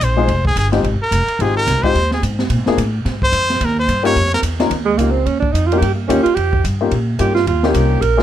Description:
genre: jazz, small-group swing and bop.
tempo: 217 BPM.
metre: 4/4.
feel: swing 59% on 8ths.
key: Eb mixolydian.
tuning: A4 = 438 Hz.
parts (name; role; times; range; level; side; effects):
brilliant trumpet; melody; 0.0-4.4 s; Ab4 to Db5; -18 LUFS; equal; none.
upright bass; bass; 0.0-8.2 s; F1 to Bb2; -18 LUFS; equal; none.
open jazz drum kit; drums; 0.0-8.2 s; hi-hat, kick drum, ride cymbal, snare drum; -23 LUFS; right 1 dB; none.
warm baby grand piano; accompaniment; 0.2-8.2 s; Ab3 to Bb4; -18 LUFS; left 6 dB; none.
clear alto saxophone; second line; 4.9-8.2 s; Ab3 to Bb4; -17 LUFS; right 7 dB; none.
room: light reverb.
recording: none.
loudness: -14 LUFS.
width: side -11 dB against mid.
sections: 0.0-4.7 A section; 4.7-8.2 A section.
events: trumpet solo 0.0-4.7; alto saxophone solo 4.7-8.2.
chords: 0.3 Fm7; 2.5 Bb7sus2; 3.6 Eb9.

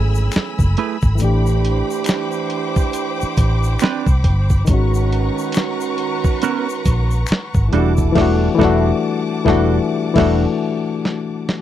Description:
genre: R&B, neo-soul.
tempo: 69 BPM.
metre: 4/4.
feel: swing 61% on 16ths.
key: unclear.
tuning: A4 = 440 Hz.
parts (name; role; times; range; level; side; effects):
barky reed electric piano; accompaniment; 0.0-11.6 s; D#3 to G#4; -20 LUFS; left 6 dB; none.
warm studio string section; sustained chords; 0.0-11.6 s; G3 to E6; -27 LUFS; left 1 dB; none.
clear trombone section; stabs; 0.0-10.4 s; B2 to G#4; -25 LUFS; right 13 dB; none.
vintage muted fingered electric bass; bass; 0.0-10.4 s; E1 to C2; -17 LUFS; equal; none.
egg shaker and finger snaps; percussion; 0.1-8.1 s; none; -33 LUFS; left 8 dB; none.
dusty soul sampler-style drum kit; drums; 0.3-11.6 s; crash cymbal, hi-hat, kick drum, snare drum; -18 LUFS; equal; none.
semi-hollow electric guitar; second line; 0.8-10.5 s; G3 to B4; -20 LUFS; right 11 dB; none.
room: little or no reverb.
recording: dry, close 1970s-style studio recording.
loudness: -15 LUFS.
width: side -12 dB against mid.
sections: 0.0-11.6 A section.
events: band accent 8.2-11.6; drum fill 9.9-11.6.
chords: 0.0 F#m11; 1.2 Am11; 4.7 G#m11; 7.7 Em11.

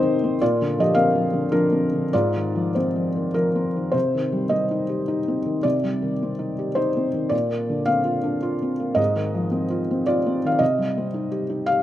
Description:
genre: neoclassical minimalist piano.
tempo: 96-112 BPM.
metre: 3/4.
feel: rubato.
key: C minor.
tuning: A4 = 440 Hz.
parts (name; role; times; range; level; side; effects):
felt-muted upright piano; solo; 0.0-11.8 s; Ab2 to F5; -20 LUFS; equal; none.
room: light reverb.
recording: rough home demo mix.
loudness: -20 LUFS.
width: side -12 dB against mid.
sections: 0.0-3.9 A section; 3.9-11.8 B section.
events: none.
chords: 0.4 Bbadd9; 2.1 Fm7/Ab; 3.9 Cm; 7.3 Bbadd9; 9.0 Fm7/Ab; 10.6 Cm.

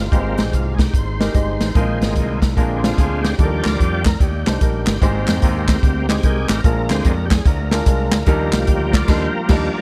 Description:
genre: uptempo gospel.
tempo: 147 BPM.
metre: 4/4.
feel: swing 65% on 8ths.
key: Eb major.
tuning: A4 = 436 Hz.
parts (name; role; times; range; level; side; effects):
clear concert grand piano; accompaniment; 0.0-9.7 s; Ab2 to Eb5; -26 LUFS; equal; none.
bright tonewheel organ; sustained chords; 0.0-9.8 s; D3 to D5; -27 LUFS; equal; slow rotary speaker, overdrive, chorus vibrato.
dark French horn section; sustained chords; 0.0-9.8 s; F3 to D5; -36 LUFS; equal; none.
modern bright fingered electric bass; bass; 0.0-9.7 s; G1 to F2; -25 LUFS; equal; none.
swinging big-band drum kit; drums; 0.1-9.7 s; crash cymbal, hi-hat, kick drum, snare drum; -20 LUFS; equal; none.
group handclap; percussion; 3.6-9.0 s; none; -28 LUFS; equal; none.
room: light reverb.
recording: dark, warm production.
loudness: -17 LUFS.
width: mono.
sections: 0.0-9.8 A section.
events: tonewheel organ solo 0.0-9.8; band accent 9.1-9.8.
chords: 0.1 Abmaj7; 1.8 Bb7sus4; 2.6 Bb7; 3.4 Ebmaj7; 5.0 Abmaj7; 6.6 Bb7; 8.3 Ebmaj7.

